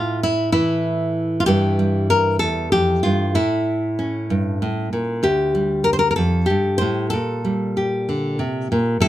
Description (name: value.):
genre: folk, solo fingerstyle acoustic guitar.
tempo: 64 BPM (dotted quarters).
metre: 6/8.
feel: straight.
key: unclear.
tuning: A4 = 439 Hz.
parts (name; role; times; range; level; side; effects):
nylon-string guitar; solo; 0.0-9.1 s; D2 to C5; -17 LUFS; equal; none.
room: light reverb.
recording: close, detailed microphones.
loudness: -18 LUFS.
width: side -13 dB against mid.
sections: 0.0-9.1 A section.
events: none.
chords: 0.0 A5; 1.5 Edim; 3.4 A; 5.2 Dmadd11; 7.1 Gmadd9/Bb.